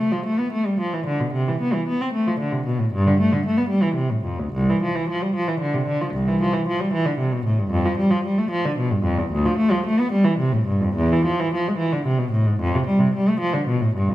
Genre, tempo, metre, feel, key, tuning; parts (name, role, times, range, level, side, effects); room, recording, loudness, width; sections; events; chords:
classical, baroque-style suite movement for unaccompanied cello; 75 BPM (dotted quarters); 12/8; rubato; C major; A4 = 440 Hz
dark cello; solo; 0.0-14.1 s; C2 to C4; -19 LUFS; equal
wet recital hall reverb, RT60 1.5 s; minimal, uncompressed stereo recording; -19 LUFS; side -15 dB against mid
0.0-14.1 A section